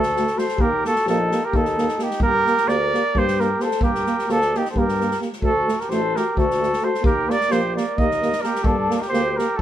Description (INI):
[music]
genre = balkan folk, Balkan brass band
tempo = 261 BPM (eighths)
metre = 7/8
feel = straight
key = G harmonic minor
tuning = A4 = 440 Hz
[part]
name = dark trumpet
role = melody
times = 0.0-9.6 s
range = G4 to Eb5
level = -22 LUFS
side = right 2 dB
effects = none
[part]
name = warm flugelhorn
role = second line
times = 0.0-9.6 s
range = D4 to Bb4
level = -27 LUFS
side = left 2 dB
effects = none
[part]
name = warm tuba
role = bass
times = 0.0-9.6 s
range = A1 to G2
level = -26 LUFS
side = left 2 dB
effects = none
[part]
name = unplugged drum kit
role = percussion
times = 0.0-9.6 s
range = kick drum, snare drum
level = -26 LUFS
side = equal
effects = none
[part]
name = mellow euphonium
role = accompaniment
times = 0.2-9.6 s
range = F#4 to G4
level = -30 LUFS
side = left 5 dB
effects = none
[part]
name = warm euphonium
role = accompaniment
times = 0.2-9.5 s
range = A3 to Bb3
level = -26 LUFS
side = right 3 dB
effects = none
[sound]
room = light reverb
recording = band playing live in one room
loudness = -18 LUFS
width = side -11 dB against mid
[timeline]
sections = 0.0-9.6 A section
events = none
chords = 0.0 D; 0.6 Eb; 2.2 Gm; 5.4 D; 7.0 Eb; 8.6 Gm